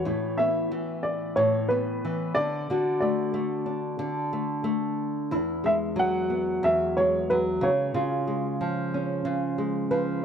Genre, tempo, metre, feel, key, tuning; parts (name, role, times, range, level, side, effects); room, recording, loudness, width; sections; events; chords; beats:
pop; 91 BPM; 4/4; straight; A major; A4 = 440 Hz
dark upright piano; melody; 0.0-10.2 s; B4 to F#5; -26 LUFS; right 1 dB
nylon-string guitar; accompaniment; 0.0-10.2 s; E2 to F#4; -26 LUFS; left 1 dB
moderate plate reverb, RT60 3.3 s; -24 LUFS; side -8 dB against mid
0.1-10.2 A section
0.1 Asus2; 2.4 D; 5.3 Eadd9; 7.6 C#
| 0.06 0.72 1.37 2.03 | 2.69 3.35 4.00 4.66 | 5.31 5.97 6.63 7.28 | 7.94 8.60 9.25 9.91